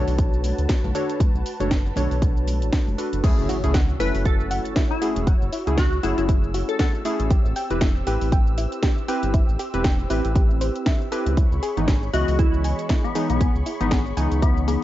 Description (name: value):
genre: deep house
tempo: 118 BPM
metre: 4/4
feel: swing 57% on 16ths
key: F# minor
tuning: A4 = 440 Hz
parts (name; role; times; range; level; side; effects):
- warm analog pad; sustained chords; 0.0-14.8 s; C4 to E6; -34 LUFS; equal; chorus, sidechain pumping
- warm analog keys; stabs; 0.0-14.8 s; E3 to D#5; -28 LUFS; equal; chorus, sidechain pumping, tape echo
- round analog bass; bass; 0.0-14.8 s; E1 to D2; -24 LUFS; equal; none
- house drum kit; drums; 0.1-14.8 s; crash cymbal, hi-hat, shaker, snare drum; -30 LUFS; equal; none
- electronic kick drum; drums; 0.2-14.5 s; none; -20 LUFS; equal; none
- congas; percussion; 0.4-3.0 s; none; -34 LUFS; left 3 dB; none
- soft round pluck; arpeggios; 3.2-14.8 s; E4 to G#5; -32 LUFS; right 1 dB; chorus, sidechain pumping, tape echo
- impact; sound effects; 3.2-5.3 s; none; -31 LUFS; equal; none
- glassy wavetable pluck; melody; 4.0-6.9, 12.1-14.8 s; B3 to B4; -28 LUFS; left 4 dB; chorus, tape echo
room: digital ambience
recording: nothing above 7.6 kHz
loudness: -19 LUFS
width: side -14 dB against mid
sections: 0.0-3.2 A section; 3.2-14.8 B section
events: drop 3.2-14.8; impact 3.2-5.3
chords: 0.0 Bm7; 3.2 F#m7; 7.3 Am7; 11.4 C#m7